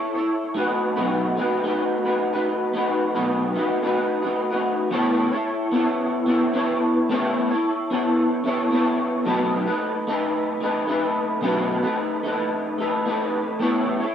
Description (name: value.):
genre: indie pop.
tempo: 111 BPM.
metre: 4/4.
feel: straight.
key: A lydian.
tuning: A4 = 440 Hz.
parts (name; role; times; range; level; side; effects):
electric guitar through a small old amp; solo; 0.0-14.1 s; B2 to C#5; -20 LUFS; equal; ensemble chorus, warbly pitch drift.
room: moderate lush hall reverb, RT60 2.4 s.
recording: rough home demo mix.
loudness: -20 LUFS.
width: side -9 dB against mid.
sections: 0.0-4.9 A section; 4.9-14.1 B section.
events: none.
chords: 0.0 A; 0.6 B7; 4.9 Aadd9; 9.3 B7; 13.6 Aadd9.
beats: 0.03 | 0.57 1.11 1.66 2.20 | 2.75 3.29 3.83 4.38 | 4.92 5.46 6.00 6.55 | 7.09 7.63 8.17 8.72 | 9.26 9.80 10.34 10.89 | 11.43 11.97 12.51 13.06 | 13.60 14.14.